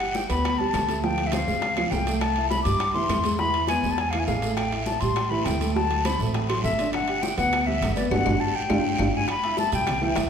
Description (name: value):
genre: Afro-Cuban jazz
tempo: 204 BPM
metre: 4/4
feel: straight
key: G major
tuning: A4 = 441 Hz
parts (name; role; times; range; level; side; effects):
- breathy silver concert flute; melody; 0.0-10.1 s; D5 to D6; -26 LUFS; left 3 dB; none
- dark upright piano; accompaniment; 0.0-10.3 s; E3 to E6; -27 LUFS; right 3 dB; none
- upright bass; bass; 0.0-10.3 s; G1 to A2; -29 LUFS; equal; none
- congas; percussion; 0.0-10.3 s; none; -34 LUFS; left 2 dB; none
- timbales; percussion; 0.0-10.3 s; none; -36 LUFS; right 5 dB; none
- guiro; percussion; 0.1-10.3 s; none; -38 LUFS; right 5 dB; none
- bongos; percussion; 0.2-10.3 s; none; -35 LUFS; left 4 dB; none
- claves; percussion; 0.5-10.3 s; none; -41 LUFS; left 5 dB; none
room: wet recital hall reverb, RT60 1.6 s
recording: recorded in a church or concert hall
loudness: -22 LUFS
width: side -7 dB against mid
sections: 0.0-9.3 A section; 9.3-10.3 B section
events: band accent 8.1-9.3; drum fill 8.6-9.3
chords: 0.0 G; 1.0 Dm7; 1.6 C#; 2.2 C6; 3.4 E; 4.6 Am7; 5.8 D9; 6.9 Gmaj7; 8.7 G5; 9.3 C